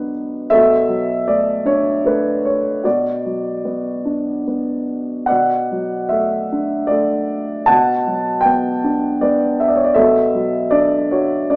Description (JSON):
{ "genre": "classical, lyrical solo piano", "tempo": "72-81 BPM", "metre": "3/4", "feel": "rubato", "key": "B minor", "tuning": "A4 = 440 Hz", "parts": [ { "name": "dark concert grand piano", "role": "solo", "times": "0.0-11.6 s", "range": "B2 to A5", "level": "-15 LUFS", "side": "equal", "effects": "none" } ], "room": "moderate recital hall reverb, RT60 1.6 s", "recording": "small speaker sound", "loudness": "-14 LUFS", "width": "side -27 dB against mid", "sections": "0.0-11.6 A section", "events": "none", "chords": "0.0 Bm; 0.5 Bm7; 2.8 Bm; 5.3 Bm7; 7.7 Gmaj7/B; 10.0 Bm7" }